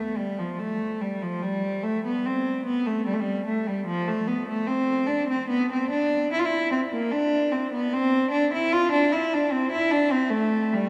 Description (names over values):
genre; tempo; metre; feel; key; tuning
classical, baroque-style suite movement for unaccompanied cello; 74 BPM; 4/4; rubato; C major; A4 = 440 Hz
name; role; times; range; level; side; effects
rich cello; solo; 0.0-10.9 s; F3 to F4; -25 LUFS; equal; none
room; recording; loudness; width
wet cathedral reverb, RT60 4.8 s; none; -25 LUFS; mono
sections
0.0-10.9 A section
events
none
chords
none